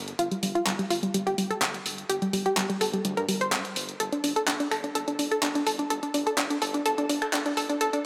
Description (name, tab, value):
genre	progressive house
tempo	126 BPM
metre	4/4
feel	straight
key	unclear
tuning	A4 = 439 Hz
part	analog pluck	arpeggios	0.0-8.0 s	G3 to C5	-29 LUFS	equal	chorus, tape echo
part	round analog bass	bass	0.0-7.9 s	G1 to G2	-43 LUFS	equal	high-pass filter
part	deep house drum kit	drums	0.1-8.0 s	finger snaps, handclaps, hi-hat	-32 LUFS	equal	none
room	wet lush hall reverb, RT60 2.4 s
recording	high-pass filter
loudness	-27 LUFS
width	mono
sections	0.0-8.1 A section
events	build-up 0.0-8.1; filter sweep on synth pluck 0.0-8.1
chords	0.0 G5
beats	| 0.19 0.67 1.14 1.62 | 2.10 2.57 3.05 3.52 | 4.00 4.48 4.95 5.43 | 5.90 6.38 6.86 7.33 | 7.81